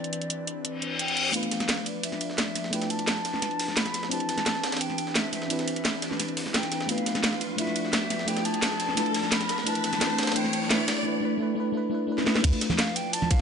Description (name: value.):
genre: liquid drum and bass.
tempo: 173 BPM.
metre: 4/4.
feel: straight.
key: D dorian.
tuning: A4 = 440 Hz.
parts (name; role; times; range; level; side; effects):
mellow hollow jazz flute; melody; 0.0-13.4 s; D5 to B5; -33 LUFS; equal; low-pass filter, dub echo.
mellow FM electric piano; accompaniment; 0.0-13.4 s; A3 to B4; -31 LUFS; left 1 dB; chorus, dub echo.
airy breathy pad; sustained chords; 0.0-13.4 s; E3 to D5; -36 LUFS; left 1 dB; chorus.
garage drum kit; drums; 0.0-13.4 s; crash cymbal, hi-hat, snare drum; -29 LUFS; equal; none.
reverse cymbal and riser; sound effects; 0.8-11.1 s; none; -33 LUFS; left 1 dB; none.
breakbeat sampler-style drum kit; drums; 1.3-13.4 s; hi-hat, ride cymbal, snare drum; -33 LUFS; right 2 dB; high-pass filter on cymbals, high-pass filter on snare, high-pass filter on hats.
saturated sub bass; bass; 12.4-12.5 s; D2; -22 LUFS; equal; tube saturation.
electronic kick drum; drums; 12.4-13.4 s; none; -24 LUFS; equal; none.
congas; percussion; 12.7-13.3 s; none; -29 LUFS; right 3 dB; none.
room: moderate lush hall reverb, RT60 2.4 s.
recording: nothing above 10.5 kHz.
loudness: -24 LUFS.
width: side -6 dB against mid.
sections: 0.0-1.3 A section; 1.3-12.4 B section.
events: reverse cymbal 0.8-1.3; build-up 1.3-12.4; riser 1.3-11.1; filter sweep on flute 1.3-12.4; drum fill 12.2.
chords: 0.0 Cmaj9; 1.3 Dm69; 4.1 Cmaj9; 6.9 Dm69; 9.7 Cmaj9; 12.4 Dm69.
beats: 0.30 0.65 0.99 | 1.34 1.69 2.04 2.38 | 2.73 3.08 3.42 3.77 | 4.12 4.46 4.81 5.16 | 5.50 5.85 6.20 6.54 | 6.89 7.24 7.58 7.93 | 8.28 8.62 8.97 9.32 | 9.66 10.01 10.36 10.71 | 11.05 11.40 11.75 12.09 | 12.44 12.79 13.13.